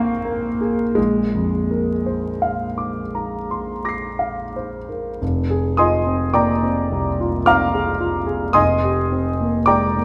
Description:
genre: classical, impressionist solo piano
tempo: 41-56 BPM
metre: 3/4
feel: rubato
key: F dorian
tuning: A4 = 440 Hz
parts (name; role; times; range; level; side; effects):
- warm concert grand piano; solo; 0.0-10.0 s; F1 to C7; -20 LUFS; equal; none
room: moderate scoring stage reverb, RT60 1.7 s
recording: dark, warm production, vinyl crackle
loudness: -20 LUFS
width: mono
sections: 0.0-5.2 A section; 5.2-10.0 B section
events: none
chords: 0.0 Bbm7; 1.0 Bb9; 5.2 Fm6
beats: | 0.97 2.42 3.87 | 5.21 6.36 7.47 | 8.55 9.68

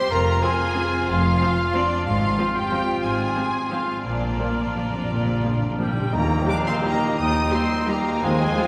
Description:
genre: classical, orchestral ballroom waltz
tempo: 162-197 BPM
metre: 3/4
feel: rubato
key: Eb major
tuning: A4 = 440 Hz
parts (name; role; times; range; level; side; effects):
- rich symphonic violin section; melody; 0.0-8.7 s; D5 to Eb6; -32 LUFS; equal; none
- bright small flute group; second line; 0.0-8.7 s; F5 to C6; -32 LUFS; equal; none
- rich symphonic violin section; second line; 0.0-8.7 s; D4 to F5; -33 LUFS; equal; none
- warm cor anglais; second line; 0.0-8.7 s; G3 to F4; -33 LUFS; equal; none
- mellow French horn section; sustained chords; 0.0-8.7 s; Bb3 to G4; -32 LUFS; equal; none
- rich symphonic cello section; bass; 0.1-8.5 s; Eb2 to Bb2; -31 LUFS; equal; none
- rich symphonic double bass section; bass; 0.1-8.5 s; F1 to Eb2; -30 LUFS; equal; none
- rich symphonic viola section; accompaniment; 0.4-8.6 s; F3 to G4; -34 LUFS; equal; none
- timpani; percussion; 4.1-6.1 s; Bb2; -31 LUFS; equal; none
- clear bassoon; accompaniment; 6.1-8.7 s; C4 to Eb4; -30 LUFS; equal; none
- warm trombone section; sustained chords; 6.1-8.7 s; F3 to Ab3; -35 LUFS; equal; none
- mellow tuba; bass; 6.1-8.5 s; Eb2; -33 LUFS; equal; none
- tam-tam; percussion; 6.1-7.5 s; none; -37 LUFS; equal; none
room: wet church reverb, RT60 3.8 s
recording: none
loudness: -22 LUFS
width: mono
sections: 0.0-6.1 A section; 6.1-8.7 B section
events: timpani fill 4.1-6.1; band accent 6.1-6.5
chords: 0.1 Fm; 2.1 Fm/Ab; 4.1 Bb; 6.1 Eb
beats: | 0.11 0.43 0.77 | 1.08 1.41 1.75 | 2.07 2.39 2.73 | 3.04 3.37 3.71 | 4.05 4.40 4.76 | 5.10 5.44 5.80 | 6.14 6.49 6.85 | 7.19 7.53 7.89 | 8.23 8.58

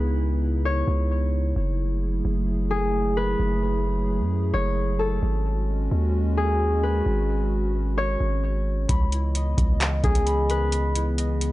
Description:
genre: hip hop, atmospheric cloud-rap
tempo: 131 BPM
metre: 4/4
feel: half-time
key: C# minor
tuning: A4 = 438 Hz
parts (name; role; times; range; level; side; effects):
- concert harp; melody; 0.0-11.5 s; G#4 to C#5; -28 LUFS; left 1 dB; low-pass filter, analog delay
- dark analog pad; sustained chords; 0.0-11.5 s; C#3 to D#5; -30 LUFS; right 1 dB; chorus, sidechain pumping
- long sustained 808-style bass; bass; 0.0-11.5 s; F#1 to F#2; -24 LUFS; equal; none
- mellow electric guitar; arpeggios; 8.9-11.5 s; C#4 to B5; -34 LUFS; left 1 dB; lush chorus, low-pass filter, analog delay
- booming analog drum machine; drums; 8.9-11.5 s; handclaps, hi-hat, kick drum; -23 LUFS; equal; none
room: little or no reverb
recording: dry, gritty hardware recording, nothing above 10.9 kHz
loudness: -21 LUFS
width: side -17 dB against mid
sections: 0.0-11.5 A section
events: none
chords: 0.0 C#m9; 1.6 F#m9; 5.2 G#7sus4; 8.9 C#m9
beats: 0.19 0.65 1.11 | 1.56 2.02 2.48 2.94 | 3.40 3.85 4.31 4.77 | 5.23 5.69 6.14 6.60 | 7.06 7.52 7.98 8.43 | 8.89 9.35 9.81 10.27 | 10.72 11.18

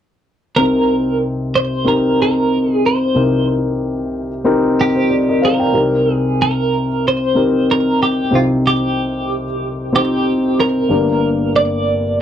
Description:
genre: pop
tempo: 93 BPM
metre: 4/4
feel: swing 56% on 16ths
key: C minor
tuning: A4 = 439 Hz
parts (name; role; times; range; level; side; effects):
- twelve-string electric guitar; melody; 0.6-12.2 s; F4 to D5; -18 LUFS; right 2 dB; tremolo, slapback echo
- dark upright piano; accompaniment; 0.6-12.2 s; G1 to G5; -15 LUFS; left 1 dB; none
room: moderate booth ambience, RT60 0.2 s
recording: dry, close 1970s-style studio recording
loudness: -13 LUFS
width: side -9 dB against mid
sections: 0.6-5.7 A section; 5.7-12.2 B section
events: none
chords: 0.6 Cm7; 10.9 Gm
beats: | 0.56 1.21 1.86 2.50 | 3.15 3.80 4.45 5.09 | 5.74 6.38 7.03 7.68 | 8.32 8.97 9.61 10.26 | 10.90 11.55 12.19

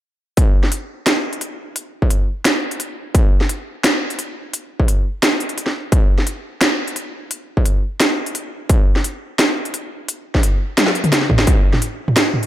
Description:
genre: drum and bass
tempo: 173 BPM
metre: 4/4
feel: half-time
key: none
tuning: none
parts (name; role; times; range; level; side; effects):
- drum and bass drum kit; drums; 0.4-12.5 s; hi-hat, snare drum, toms; -17 LUFS; equal; none
- electronic kick drum; drums; 0.4-11.5 s; none; -14 LUFS; equal; distortion
room: moderate plate reverb, RT60 1.9 s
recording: dreamy mix soaked in reverb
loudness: -16 LUFS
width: side -13 dB against mid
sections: 0.4-12.5 A section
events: drum fill 10.8-11.5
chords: none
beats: | 0.37 0.72 1.07 1.42 | 1.76 2.11 2.46 2.80 | 3.15 3.50 3.84 4.19 | 4.54 4.88 5.23 5.58 | 5.92 6.27 6.62 6.96 | 7.31 7.66 8.00 8.35 | 8.70 9.04 9.39 9.74 | 10.09 10.43 10.78 11.13 | 11.47 11.82 12.17

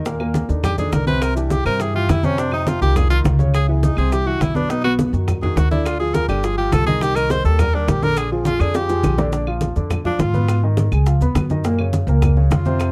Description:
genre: Afro-Cuban jazz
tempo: 207 BPM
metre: 4/4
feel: straight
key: Eb major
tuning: A4 = 440 Hz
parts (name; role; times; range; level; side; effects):
- warm concert grand piano; accompaniment; 0.0-12.9 s; Bb2 to Cb6; -26 LUFS; equal; none
- upright bass; bass; 0.0-12.9 s; G1 to Ab2; -22 LUFS; equal; none
- bongos; percussion; 0.1-12.9 s; none; -29 LUFS; equal; none
- congas; percussion; 0.1-12.9 s; none; -26 LUFS; equal; none
- maracas; percussion; 0.1-12.9 s; none; -44 LUFS; equal; none
- claves; percussion; 0.2-12.9 s; none; -39 LUFS; equal; none
- bright tenor saxophone; melody; 0.6-12.9 s; Cb4 to C5; -25 LUFS; equal; none
room: light reverb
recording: dark, warm production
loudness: -18 LUFS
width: mono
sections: 0.1-9.3 A section; 9.3-12.9 A section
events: tenor saxophone solo 0.0-9.3, 9.3-12.9; drum fill 8.7-9.3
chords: 0.1 Eb5; 1.2 C; 2.4 F5; 3.5 Dbm; 4.1 C; 4.7 B; 5.9 Ddim; 6.4 Fm9/G; 7.0 Cm9; 8.2 Bb6; 9.3 Bb; 10.5 Abm; 11.1 Db7; 11.6 Gb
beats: | 0.06 0.35 0.64 0.93 | 1.22 1.51 1.80 2.09 | 2.38 2.67 2.96 3.25 | 3.54 3.83 4.12 4.41 | 4.70 4.99 5.28 5.57 | 5.85 6.14 6.43 6.72 | 7.01 7.30 7.59 7.88 | 8.17 8.46 8.75 9.04 | 9.33 9.62 9.90 10.20 | 10.48 10.77 11.06 11.35 | 11.64 11.93 12.22 12.51 | 12.80

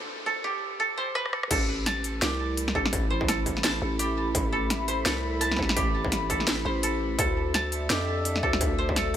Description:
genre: half-time drum and bass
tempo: 169 BPM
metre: 4/4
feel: swing 58% on 16ths, half-time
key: A minor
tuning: A4 = 441 Hz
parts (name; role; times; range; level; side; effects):
- dark analog pad; sustained chords; 0.0-9.2 s; A3 to B5; -33 LUFS; equal; chorus, phaser, sidechain pumping
- koto; arpeggios; 0.0-9.2 s; G4 to A5; -30 LUFS; right 1 dB; vintage 12-bit sampler grit, tape echo
- drum and bass drum kit; drums; 1.2-9.2 s; crash cymbal, hi-hat, rim click, snare drum; -29 LUFS; equal; high-pass filter on snare, studio reverb, high-pass filter on hats, high-pass filter on cymbals
- growling 808-style bass; bass; 1.5-9.2 s; A1 to F2; -30 LUFS; equal; none
- electronic kick drum; drums; 1.5-9.2 s; none; -30 LUFS; equal; distortion, studio reverb
room: light reverb, digital ambience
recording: high-pass filter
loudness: -24 LUFS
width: side -10 dB against mid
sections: 0.0-1.5 A section; 1.5-9.2 B section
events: build-up 0.0-1.5; break 0.1-1.5; drum fill 1.2-1.5; drop 1.5-9.2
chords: 0.0 Am; 7.2 Dm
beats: | 0.09 0.44 0.80 1.15 | 1.51 1.86 2.22 2.57 | 2.93 3.28 3.64 3.99 | 4.35 4.70 5.06 5.41 | 5.77 6.12 6.48 6.83 | 7.19 7.54 7.90 8.25 | 8.61 8.96

